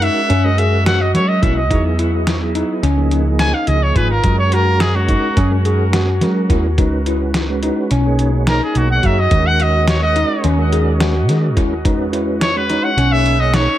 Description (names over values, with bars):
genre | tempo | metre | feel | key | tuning
progressive instrumental, band music in an uneven meter | 213 BPM (eighths) | 9/8 | straight | F# mixolydian | A4 = 444 Hz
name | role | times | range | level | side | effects
bright trumpet | melody | 0.0-13.8 s | F#4 to G#5 | -19 LUFS | right 1 dB | dub echo
mellow tonewheel organ | accompaniment | 0.0-13.7 s | E#3 to C#5 | -22 LUFS | right 3 dB | chorus vibrato, slow rotary speaker, dub echo
tine electric piano | arpeggios | 0.0-13.8 s | C#4 to G#4 | -21 LUFS | left 2 dB | medium stereo tremolo, dub echo
hollow-body short-scale picked electric bass | bass | 0.0-13.7 s | G#1 to F#3 | -17 LUFS | equal | none
dusty soul sampler-style drum kit | drums | 0.0-13.7 s | hi-hat, kick drum, snare drum | -20 LUFS | equal | dub echo
room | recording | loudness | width
light reverb | echo-heavy mix | -13 LUFS | side -13 dB against mid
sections
0.0-13.8 A section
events
trumpet solo 0.0-13.8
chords
0.0 F#; 1.7 Emaj7; 2.8 C#; 4.2 F#; 6.8 C#m7; 7.9 Badd9; 9.3 D#m; 11.9 Emaj7; 13.0 Badd9